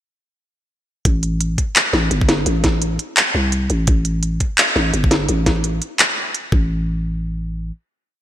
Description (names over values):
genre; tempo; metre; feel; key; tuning
half-time drum and bass; 170 BPM; 4/4; swing 59% on 16ths, half-time; A minor; A4 = 439 Hz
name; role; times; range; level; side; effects
growling 808-style bass; bass; 1.1-7.7 s; G1 to C2; -19 LUFS; equal; none
electronic kick drum; drums; 1.1-6.6 s; none; -17 LUFS; equal; small room ambience
organic electronic drum kit; drums; 1.1-6.4 s; handclaps, hi-hat, snare drum; -17 LUFS; equal; small room ambience, gated reverb
room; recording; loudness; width
light reverb; bright 1980s-style digital production; -15 LUFS; side -12 dB against mid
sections
1.1-6.7 drop; 6.7-8.2 final hit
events
drop 1.1-6.7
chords
none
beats
| 1.05 1.40 1.76 2.11 | 2.46 2.82 3.17 3.52 | 3.87 4.23 4.58 4.93 | 5.29 5.64 5.99 6.34 | 6.70 7.05 7.40